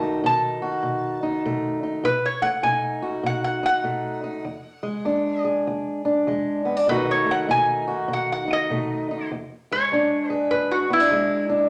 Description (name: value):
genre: acoustic country blues, solo or duo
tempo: 99 BPM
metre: 4/4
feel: swing 63% on 8ths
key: E major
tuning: A4 = 440 Hz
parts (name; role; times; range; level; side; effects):
- metal-body resonator slide guitar; melody; 0.0-11.7 s; E4 to A5; -25 LUFS; equal; none
- fingerpicked acoustic archtop guitar; accompaniment; 0.0-11.7 s; E2 to G#4; -26 LUFS; equal; none
room: wet large studio reverb, RT60 0.8 s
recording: none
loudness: -23 LUFS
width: mono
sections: 0.0-9.3 A section; 9.3-11.7 A section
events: resonator guitar played with a steel bar solo 0.0-9.3, 9.3-11.7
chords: 0.0 B7; 4.5 E7; 6.9 B7; 9.3 E7